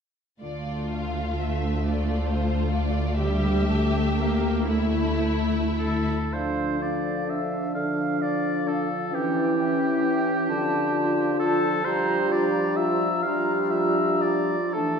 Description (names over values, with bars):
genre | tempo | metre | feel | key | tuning
classical, slow romantic movement for symphony orchestra | 34-45 BPM (dotted quarters) | 6/8 | rubato | D minor | A4 = 440 Hz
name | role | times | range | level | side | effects
warm symphonic violin section | melody | 0.4-6.1 s | C5 to F5 | -36 LUFS | left 3 dB | none
warm studio violin section | second line | 0.4-6.1 s | E4 to G4 | -31 LUFS | equal | none
warm symphonic viola section | accompaniment | 0.4-6.1 s | G3 to Bb3 | -28 LUFS | left 2 dB | none
rich symphonic double bass section | bass | 0.4-6.1 s | D2 | -28 LUFS | equal | none
warm symphonic cello section | bass | 0.4-6.1 s | D2 | -31 LUFS | equal | none
warm oboe | second line | 5.8-15.0 s | G4 to F5 | -28 LUFS | equal | none
concert flute | second line | 6.3-15.0 s | F5 to Bb5 | -32 LUFS | equal | none
warm clarinet | second line | 6.3-15.0 s | C#4 to F4 | -30 LUFS | right 3 dB | none
mellow bassoon | accompaniment | 6.3-15.0 s | D3 to A3 | -28 LUFS | right 2 dB | none
dark French horn section | sustained chords | 6.3-15.0 s | E3 to D4 | -27 LUFS | left 3 dB | none
room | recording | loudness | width
wet concert hall reverb, RT60 2.3 s | heard from further back in the room | -22 LUFS | side -6 dB against mid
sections
0.4-6.3 A section; 6.3-15.0 B section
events
none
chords
0.4 Dm; 3.2 A5/D; 6.3 Dm; 9.1 C#dim/E; 10.5 Dm; 11.9 Gm7/F